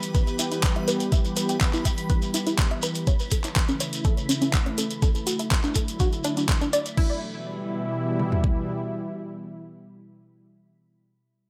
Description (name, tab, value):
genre	progressive house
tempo	123 BPM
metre	4/4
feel	straight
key	E dorian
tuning	A4 = 440 Hz
part	lush unison pad	sustained chords	0.0-10.5 s	B2 to G4	-32 LUFS	equal	chorus, sidechain pumping
part	pop drum kit	drums	0.0-7.1 s	crash cymbal, handclaps, hi-hat	-32 LUFS	equal	overdrive
part	shekere	percussion	0.0-7.0 s	none	-36 LUFS	equal	none
part	backwards swelling texture	texture	0.0-7.0 s	B4 to B5	-44 LUFS	equal	built-in reverb, sidechain pumping
part	tight sequenced synth	arpeggios	0.1-7.2 s	C#4 to E5	-31 LUFS	equal	chorus, sidechain pumping, digital delay
part	pop drum kit	drums	0.1-8.6 s	kick drum, toms	-25 LUFS	equal	overdrive
room	light reverb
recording	none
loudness	-25 LUFS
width	mono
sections	0.0-7.0 A section; 7.0-10.9 B section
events	filter sweep on synth arpeggio sound 0.0-7.0; filter sweep on analog synth pad 0.0-7.0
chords	0.0 Em; 3.1 A; 5.0 Dadd9; 7.0 Em